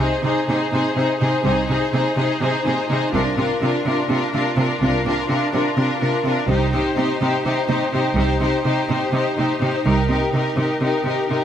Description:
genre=cinematic, epic orchestral film score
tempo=250 BPM (eighths)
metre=7/8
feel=straight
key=C minor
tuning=A4 = 440 Hz
part: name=rich symphonic violin section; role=melody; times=0.0-11.4 s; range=Bb4 to C5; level=-24 LUFS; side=left 4 dB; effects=none
part: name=rich symphonic violin section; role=second line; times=0.0-11.4 s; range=F4 to Ab4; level=-25 LUFS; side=left 2 dB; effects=none
part: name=rich symphonic viola section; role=accompaniment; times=0.0-11.4 s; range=D4 to Eb4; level=-24 LUFS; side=equal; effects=none
part: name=clear symphonic cello section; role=bass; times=0.0-11.4 s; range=C3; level=-22 LUFS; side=right 2 dB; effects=none
part: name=rich symphonic double bass section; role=bass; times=1.4-10.1 s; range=C2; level=-23 LUFS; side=right 2 dB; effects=none
room=moderate scoring stage reverb, RT60 1.9 s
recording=none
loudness=-17 LUFS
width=side -9 dB against mid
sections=0.0-11.4 A section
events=none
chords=0.0 Ab/C; 3.1 Bbadd9/C; 6.5 Cm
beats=0.00 0.24 0.48 0.72 0.97 1.21 | 1.45 1.69 1.93 2.17 2.42 2.66 2.90 | 3.14 3.38 3.62 3.86 4.09 4.33 4.57 | 4.81 5.05 5.29 5.53 5.77 6.01 6.25 | 6.49 6.73 6.97 7.21 7.45 7.69 7.93 | 8.17 8.41 8.65 8.89 9.13 9.37 9.61 | 9.85 10.09 10.33 10.57 10.81 11.06 11.30

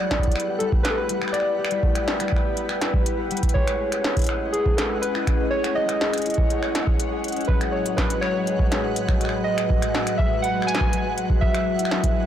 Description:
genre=IDM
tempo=122 BPM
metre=4/4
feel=straight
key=A lydian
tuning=A4 = 440 Hz
part: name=warbly lo-fi synth keys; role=melody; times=0.0-12.3 s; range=G#4 to G#5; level=-26 LUFS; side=right 1 dB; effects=chorus, tape echo
part: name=glassy FM pad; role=sustained chords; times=0.0-12.3 s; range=A2 to D#5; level=-29 LUFS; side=left 1 dB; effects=ensemble chorus, built-in reverb
part: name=concert harp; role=arpeggios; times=0.0-12.3 s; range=F#3 to B4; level=-29 LUFS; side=left 4 dB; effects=vintage 12-bit sampler grit, tape echo
part: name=flickering grainy texture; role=texture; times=0.0-12.3 s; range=F#5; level=-36 LUFS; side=right 2 dB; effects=built-in reverb, sidechain pumping
part: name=electronic kick drum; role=drums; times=0.1-12.1 s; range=none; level=-23 LUFS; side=equal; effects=none
part: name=industrial drum kit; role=drums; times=0.1-12.1 s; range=finger snaps, hi-hat, snare drum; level=-28 LUFS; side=equal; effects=none
room=light reverb, digital ambience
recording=blown-out, overdriven recording, overdrive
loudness=-20 LUFS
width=side -10 dB against mid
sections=0.0-12.3 A section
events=drum fill 3.3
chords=0.0 G69; 3.6 Amaj9#11; 7.5 G#m7/A; 11.4 F#9sus4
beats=0.11 0.60 1.09 | 1.59 2.08 2.57 3.06 | 3.55 4.04 4.54 5.03 | 5.52 6.01 6.50 7.00 | 7.49 7.98 8.47 8.96 | 9.46 9.95 10.44 10.93 | 11.42 11.91

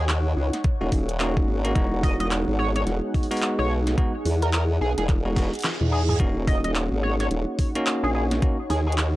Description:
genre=glitch hop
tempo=108 BPM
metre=4/4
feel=swing 61% on 16ths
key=Eb minor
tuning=A4 = 440 Hz
part: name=sync lead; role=melody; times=0.0-8.9 s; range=G#4 to D#5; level=-30 LUFS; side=equal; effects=analog chorus, tape echo
part: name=formant-sweep wobble bass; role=bass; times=0.0-9.2 s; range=Eb1 to E2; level=-24 LUFS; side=equal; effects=chorus, tube saturation
part: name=airy breathy pad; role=texture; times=0.0-9.2 s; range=Eb4 to Gb5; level=-33 LUFS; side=equal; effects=chorus, sidechain pumping
part: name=pop drum kit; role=drums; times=0.1-9.1 s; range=handclaps, hi-hat, snare drum, toms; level=-28 LUFS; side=equal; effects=overdrive
part: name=electronic kick drum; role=drums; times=0.6-8.6 s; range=none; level=-23 LUFS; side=equal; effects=overdrive
part: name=bell-like tine electric piano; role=stabs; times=0.8-8.6 s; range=G#3 to Gb4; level=-28 LUFS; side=equal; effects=sidechain pumping, tape echo
part: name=reverse cymbal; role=sound effects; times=5.5-6.2 s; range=none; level=-36 LUFS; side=right 6 dB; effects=none
room=little or no reverb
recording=dry, gritty hardware recording, transformer saturation, cassette tape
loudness=-21 LUFS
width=side -17 dB against mid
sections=0.0-9.2 A section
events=drum fill 5.4-6.2; reverse cymbal 5.5-6.2; kick drops out 5.6-6.2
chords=0.0 Ebm7; 1.8 Emaj9; 6.2 Ebm7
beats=0.09 0.64 1.20 | 1.75 2.31 2.87 3.42 | 3.98 4.53 5.09 5.64 | 6.20 6.75 7.31 7.87 | 8.42 8.98

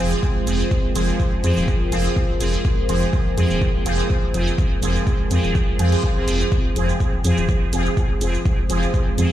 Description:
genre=dub techno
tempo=124 BPM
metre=4/4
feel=swing 53% on 16ths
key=F minor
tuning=A4 = 436 Hz
part: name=deep dark ambient pad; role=sustained chords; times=0.0-9.3 s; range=Ab3 to C5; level=-28 LUFS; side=left 1 dB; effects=chorus, built-in reverb, sidechain pumping
part: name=resonant sweep polysynth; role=stabs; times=0.0-9.3 s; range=F3 to Ab4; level=-23 LUFS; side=right 1 dB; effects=chorus, phaser, sidechain pumping, dub echo
part: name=round analog bass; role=bass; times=0.0-9.3 s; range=Eb1 to F2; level=-21 LUFS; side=equal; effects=sidechain pumping
part: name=electronic shaker and hi-hat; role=drums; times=0.1-9.3 s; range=none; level=-34 LUFS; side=right 3 dB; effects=none
part: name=electronic kick drum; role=drums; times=0.2-9.0 s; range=none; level=-20 LUFS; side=equal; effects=none
room=light reverb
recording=played on a big sound system in a bare room, large studio reverb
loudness=-17 LUFS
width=side -12 dB against mid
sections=0.0-6.5 A section; 6.5-9.3 A section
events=none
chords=0.0 Fm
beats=0.23 | 0.71 1.20 1.68 2.16 | 2.65 3.13 3.62 4.10 | 4.58 5.07 5.55 6.04 | 6.52 7.00 7.49 7.97 | 8.46 8.94

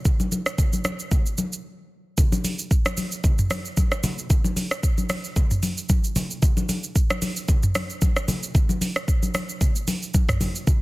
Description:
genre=amapiano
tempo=113 BPM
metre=4/4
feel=swing 55% on 16ths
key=none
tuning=none
part: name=deep house drum kit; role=drums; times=0.1-10.8 s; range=hi-hat, kick drum, rim click, shaker, toms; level=-21 LUFS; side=equal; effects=soft clipping on snare
part: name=congas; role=percussion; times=0.1-10.8 s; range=none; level=-28 LUFS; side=left 1 dB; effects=none
room=little or no reverb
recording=dense, heavily limited modern master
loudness=-21 LUFS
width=side -20 dB against mid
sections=0.0-2.2 A section; 2.2-10.8 B section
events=break 1.6-2.2; drop 2.2-10.8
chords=none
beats=| 0.05 0.58 1.11 1.65 | 2.18 2.71 3.24 3.77 | 4.30 4.83 5.36 5.89 | 6.42 6.96 7.49 8.02 | 8.55 9.08 9.61 10.14 | 10.67

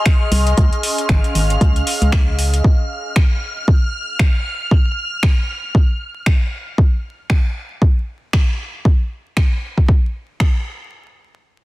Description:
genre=deep house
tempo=116 BPM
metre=4/4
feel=swing 58% on 16ths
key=unclear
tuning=A4 = 444 Hz
part: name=airy breathy pad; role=texture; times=0.0-2.6 s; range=Db4 to C6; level=-23 LUFS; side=equal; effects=chorus, sidechain pumping
part: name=string machine, violins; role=texture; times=0.0-6.8 s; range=F6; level=-27 LUFS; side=equal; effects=ensemble chorus, sidechain pumping
part: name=deep house drum kit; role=drums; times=0.1-10.5 s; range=finger snaps, hi-hat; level=-24 LUFS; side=equal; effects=soft clipping on snare
part: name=electronic kick drum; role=drums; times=0.1-10.5 s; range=none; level=-14 LUFS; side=equal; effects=overdrive
part: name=organ-like FM bass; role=bass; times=0.3-2.6 s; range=Ab1 to Db2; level=-16 LUFS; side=equal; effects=sidechain pumping
room=little or no reverb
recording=dense, heavily limited modern master, vinyl crackle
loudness=-15 LUFS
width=side -18 dB against mid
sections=0.0-10.9 A section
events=none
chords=0.0 Ab; 0.6 Dbmaj9; 2.6 N.C.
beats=0.06 | 0.57 1.09 1.61 2.13 | 2.64 3.16 3.68 4.20 | 4.71 5.23 5.75 6.26 | 6.78 7.30 7.82 8.33 | 8.85 9.37 9.88 10.40

